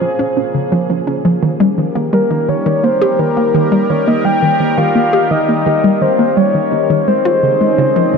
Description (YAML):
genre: ambient, sequencer-driven space music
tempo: 85 BPM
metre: 4/4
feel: straight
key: unclear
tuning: A4 = 444 Hz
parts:
  - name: soft octave-layered synth lead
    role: melody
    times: 0.0-8.2 s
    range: Bb4 to G5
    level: -15 LUFS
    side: left 2 dB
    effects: chorus, tape echo
  - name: sweeping resonant pad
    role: sustained chords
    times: 0.0-8.2 s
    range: Db3 to Eb5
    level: -19 LUFS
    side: right 1 dB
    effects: chorus, phaser
  - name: hollow square pluck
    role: riff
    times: 0.0-8.2 s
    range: Db3 to G4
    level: -15 LUFS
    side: equal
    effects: chorus, tape echo
room: wet huge ambient reverb, RT60 8.5 s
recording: cassette tape, nothing above 11.0 kHz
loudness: -11 LUFS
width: side -5 dB against mid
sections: 0.0-8.2 A section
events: fade-in on analog synth pad 0.0-8.2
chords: 0.0 Bbmadd9; 1.4 Eb; 7.1 Dbsus2